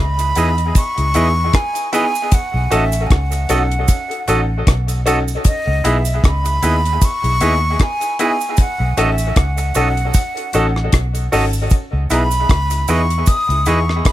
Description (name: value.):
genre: lovers rock reggae.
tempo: 77 BPM.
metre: 4/4.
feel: swing 55% on 16ths.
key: C# minor.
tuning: A4 = 440 Hz.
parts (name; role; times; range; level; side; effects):
breathy jazz flute; melody; 0.0-14.1 s; D#5 to D#6; -21 LUFS; equal; tape echo, plate reverb.
vintage muted fingered electric bass; bass; 0.0-14.0 s; G#1 to E2; -18 LUFS; equal; none.
twangy electric guitar; stabs; 0.2-13.8 s; E4 to D#5; -23 LUFS; right 3 dB; tape echo, plate reverb.
deep reggae drum kit; drums; 0.2-14.1 s; hi-hat, kick drum, rim click; -15 LUFS; equal; none.
cabasa; percussion; 0.2-13.9 s; none; -30 LUFS; right 10 dB; none.
clear grand piano; accompaniment; 0.4-13.8 s; B3 to A4; -22 LUFS; left 2 dB; tape echo, plate reverb.
room: light reverb.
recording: none.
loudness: -14 LUFS.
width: side -14 dB against mid.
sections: 0.0-14.1 A section.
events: none.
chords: 0.0 C#m9; 2.3 B7; 5.5 C#m9; 8.6 B7; 11.7 C#m9.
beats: 0.76 1.54 | 2.32 3.11 3.89 4.67 | 5.45 6.23 7.02 7.80 | 8.58 9.36 10.14 10.93 | 11.71 12.49 13.27 14.05.